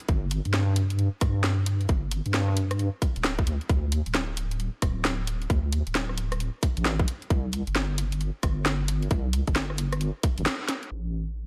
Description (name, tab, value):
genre	UK garage, two-step garage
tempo	133 BPM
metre	4/4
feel	swing 63% on 16ths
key	unclear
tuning	A4 = 440 Hz
part	garage drum kit	drums	0.0-11.5 s	hi-hat, rim click, shaker, snare drum	-32 LUFS	equal	overdrive, low-pass filter on snare, studio reverb, low-pass filter on hats, low-pass filter on perc
part	deep soft wobble bass	bass	0.1-11.5 s	D1 to G2	-29 LUFS	equal	chorus, tube saturation, sidechain pumping
part	electronic kick drum	drums	0.1-10.3 s	none	-27 LUFS	equal	overdrive, studio reverb
room	digital ambience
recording	low-pass filter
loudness	-27 LUFS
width	mono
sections	0.0-10.9 A section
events	band accent 10.5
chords	none